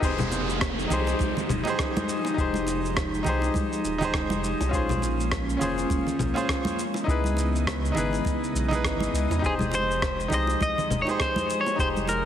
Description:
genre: sunset chillout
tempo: 102 BPM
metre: 4/4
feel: swing 58% on 16ths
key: F minor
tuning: A4 = 439 Hz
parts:
  - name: bright grand piano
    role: accompaniment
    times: 0.0-12.3 s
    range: Db4 to C5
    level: -29 LUFS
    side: moving between left 4 dB and right 4 dB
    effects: auto-pan, tape echo
  - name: airy breathy pad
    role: sustained chords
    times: 0.5-12.3 s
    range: Db3 to Eb5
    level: -31 LUFS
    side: equal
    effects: chorus
  - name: warm sub bass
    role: bass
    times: 0.0-12.3 s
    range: Eb1 to Fb2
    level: -30 LUFS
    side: equal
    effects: none
  - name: electronic kick drum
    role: drums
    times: 0.0-11.9 s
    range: none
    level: -31 LUFS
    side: equal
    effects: none
  - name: electronic shaker, congas and rim click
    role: drums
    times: 0.0-12.2 s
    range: none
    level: -32 LUFS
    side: left 1 dB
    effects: none
  - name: downlifter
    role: sound effects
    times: 0.0-4.7 s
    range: none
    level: -34 LUFS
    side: right 1 dB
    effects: none
  - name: congas and bongos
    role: percussion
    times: 0.2-12.2 s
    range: none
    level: -34 LUFS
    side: right 2 dB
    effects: none
  - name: semi-hollow electric guitar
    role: melody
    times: 9.5-12.3 s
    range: Ab4 to Eb5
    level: -26 LUFS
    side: left 1 dB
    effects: vintage 12-bit sampler grit, tape echo
room: moderate lush hall reverb, RT60 1.9 s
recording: heavily compressed radio sound, multiband compression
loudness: -23 LUFS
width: side -10 dB against mid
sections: 0.0-12.3 A section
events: none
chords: 0.0 Fm9; 4.7 Bbm9; 6.8 Dbm9; 9.4 Fm9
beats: | 0.02 0.61 1.20 1.78 | 2.37 2.96 3.55 4.14 | 4.73 5.31 5.90 6.49 | 7.08 7.67 8.26 8.84 | 9.43 10.02 10.61 11.20 | 11.78

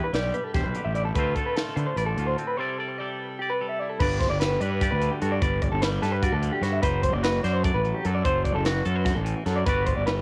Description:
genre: math rock and midwest emo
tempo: 296 BPM (eighths)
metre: 7/8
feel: straight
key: G major from 4.0 s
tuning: A4 = 439 Hz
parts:
  - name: twangy electric guitar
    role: accompaniment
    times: 0.0-10.2 s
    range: G2 to D5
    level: -34 LUFS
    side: equal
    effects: subtle chorus
  - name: electric guitar through a small old amp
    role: arpeggios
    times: 0.0-10.2 s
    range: F#4 to E5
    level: -30 LUFS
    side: equal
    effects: tremolo
  - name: fuzz fingered electric bass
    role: bass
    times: 0.1-10.2 s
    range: E1 to D3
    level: -29 LUFS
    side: equal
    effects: overdrive
  - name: crisp fusion drum kit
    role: drums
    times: 0.1-10.2 s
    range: crash cymbal, hi-hat, kick drum, snare drum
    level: -31 LUFS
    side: equal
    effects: cassette tape
room: light reverb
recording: home recording on cassette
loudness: -25 LUFS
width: mono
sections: 0.0-4.0 A section; 4.0-10.2 B section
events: break 2.6-4.0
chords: 0.0 G6; 1.2 Dm7; 2.6 C69; 4.0 Gmaj9; 6.8 D7/F#; 9.7 Gmaj7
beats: 0.14 0.34 0.54 0.75 0.95 | 1.16 1.36 1.56 1.77 1.97 2.17 2.38 | 2.58 2.78 2.99 3.19 3.39 3.60 3.80 | 4.00 4.21 4.41 4.61 4.81 5.01 5.22 | 5.42 5.62 5.83 6.03 6.23 6.43 6.63 | 6.83 7.04 7.24 7.44 7.64 7.85 8.05 | 8.25 8.45 8.65 8.86 9.06 9.26 9.46 | 9.66 9.87 10.07

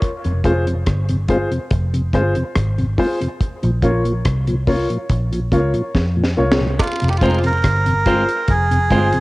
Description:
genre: dub reggae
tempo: 71 BPM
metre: 4/4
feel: straight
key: F minor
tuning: A4 = 440 Hz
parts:
  - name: deep reggae drum kit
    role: drums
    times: 0.0-9.2 s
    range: hi-hat, kick drum, rim click, snare drum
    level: -20 LUFS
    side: equal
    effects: cassette tape
  - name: mellow tonewheel organ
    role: accompaniment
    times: 0.2-9.2 s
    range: F2 to F4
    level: -22 LUFS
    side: equal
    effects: chorus vibrato, slow rotary speaker, cassette tape
  - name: vintage muted picked electric bass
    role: bass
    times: 0.3-9.1 s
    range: F1 to F2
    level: -19 LUFS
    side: equal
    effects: none
  - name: warm upright piano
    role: stabs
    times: 0.4-9.1 s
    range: F4 to Db5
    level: -23 LUFS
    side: left 1 dB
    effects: cassette tape, dub echo
  - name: melodica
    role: melody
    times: 6.8-9.2 s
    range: Eb4 to Bb4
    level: -19 LUFS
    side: right 2 dB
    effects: cassette tape, dub echo
  - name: cowbell and jawbone-type rattle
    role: percussion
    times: 6.8-7.0 s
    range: none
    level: -29 LUFS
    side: right 3 dB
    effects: dub echo
  - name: clean electric guitar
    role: accompaniment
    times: 7.2-9.1 s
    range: Ab3 to F4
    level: -25 LUFS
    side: right 2 dB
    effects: cassette tape, dub echo
room: light reverb, studio reverb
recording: home recording on cassette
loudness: -15 LUFS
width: side -20 dB against mid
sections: 0.0-6.8 A section; 6.8-9.2 B section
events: break 0.0-6.8; drum fill 5.9-6.8; part muted 6.8-9.2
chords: 0.0 Fm; 3.4 Bbm; 6.8 Fm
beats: | 0.02 0.87 1.71 2.56 | 3.41 4.25 5.10 5.95 | 6.79 7.64 8.49

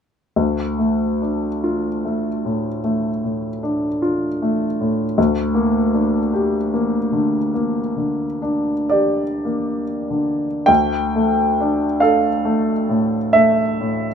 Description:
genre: classical, romantic nocturne for solo piano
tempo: 29-54 BPM (dotted quarters)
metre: 12/8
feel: rubato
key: D minor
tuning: A4 = 442 Hz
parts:
  - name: clear grand piano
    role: solo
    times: 0.4-14.1 s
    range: D2 to G5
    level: -17 LUFS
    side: equal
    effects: none
room: light reverb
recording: minimal, uncompressed stereo recording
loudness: -17 LUFS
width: side -7 dB against mid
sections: 0.4-10.7 A section; 10.7-14.1 B section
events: none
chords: 0.4 Dm; 5.2 Gm/D; 10.7 Dm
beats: | 0.36 1.63 2.84 4.02 | 5.18 6.33 7.54 8.92 | 10.69 12.03 13.35

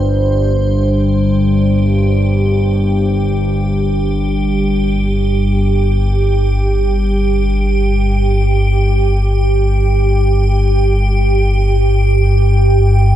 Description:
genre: dark ambient drone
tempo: free time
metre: none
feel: none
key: unclear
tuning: A4 = 441 Hz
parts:
  - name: analog drone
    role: drone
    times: 0.0-13.2 s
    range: G1 to G2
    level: -12 LUFS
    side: equal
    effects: chorus
  - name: icy glass pad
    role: texture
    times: 0.0-13.2 s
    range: G4 to C5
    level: -18 LUFS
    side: right 3 dB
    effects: chorus, built-in reverb
room: wet cathedral reverb, RT60 5.8 s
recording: in a vast, echoing space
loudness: -12 LUFS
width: side -11 dB against mid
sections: 0.6-13.2 A section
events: none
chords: 0.0 Gsus4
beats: free time

